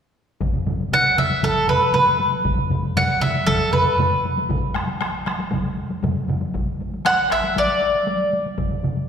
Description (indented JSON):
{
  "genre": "japanese traditional, taiko drum ensemble",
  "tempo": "117 BPM",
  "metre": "4/4",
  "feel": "straight",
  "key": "E suspended pentatonic",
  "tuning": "A4 = 440 Hz",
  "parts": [
    { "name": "solo taiko drums", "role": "percussion", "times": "0.4-9.0 s", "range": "none", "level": "-26 LUFS", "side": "right 1 dB", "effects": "none" },
    { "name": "taiko ensemble", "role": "percussion", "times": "0.4-9.1 s", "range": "none", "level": "-28 LUFS", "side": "left 1 dB", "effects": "none" },
    { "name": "taiko ensemble", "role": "percussion", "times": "0.4-9.0 s", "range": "none", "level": "-28 LUFS", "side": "left 3 dB", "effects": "none" },
    { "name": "taiko ensemble", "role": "percussion", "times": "0.4-8.7 s", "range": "none", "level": "-30 LUFS", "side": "left 1 dB", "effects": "none" },
    { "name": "bowl-back mandolin", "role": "melody", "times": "0.9-8.3 s", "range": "A4 to F#5", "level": "-18 LUFS", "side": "equal", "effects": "none" }
  ],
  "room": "wet scoring stage reverb, RT60 2.0 s",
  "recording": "recorded in a church or concert hall",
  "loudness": "-18 LUFS",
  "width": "side -7 dB against mid",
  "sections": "0.4-9.1 A section",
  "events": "none",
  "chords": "none"
}